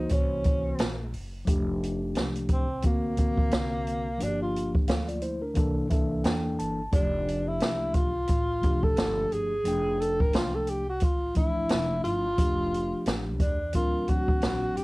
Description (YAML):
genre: hip hop, jazz-hop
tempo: 88 BPM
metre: 4/4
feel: swing 58% on 16ths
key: F major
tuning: A4 = 440 Hz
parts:
  - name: breathy tenor saxophone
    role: melody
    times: 0.0-14.8 s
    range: A#3 to Bb4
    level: -29 LUFS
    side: equal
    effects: none
  - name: mellow tine electric piano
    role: accompaniment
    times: 0.0-14.8 s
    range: D3 to A5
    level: -31 LUFS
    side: left 1 dB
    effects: medium stereo tremolo, cassette tape
  - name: upright bass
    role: bass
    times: 0.0-14.8 s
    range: F1 to E2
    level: -35 LUFS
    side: equal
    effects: none
  - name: open jazz drum kit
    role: drums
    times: 0.1-14.8 s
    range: hi-hat, kick drum, snare drum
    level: -27 LUFS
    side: equal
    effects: none
room: light reverb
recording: home recording on cassette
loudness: -24 LUFS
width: side -22 dB against mid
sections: 0.0-1.5 A section; 1.5-12.4 B section; 12.4-14.8 C section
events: tenor saxophone solo 1.5-12.4; tine electric piano fill 5.6-6.9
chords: 0.0 Gb7#11; 1.5 F69; 2.8 Daug7; 4.2 Gm7; 5.6 C13; 6.9 F69; 13.7 D7alt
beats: 0.11 0.79 | 1.47 2.15 2.84 3.52 | 4.20 4.88 5.56 6.25 | 6.93 7.61 8.29 8.97 | 9.65 10.34 11.02 11.70 | 12.38 13.06 13.75 14.43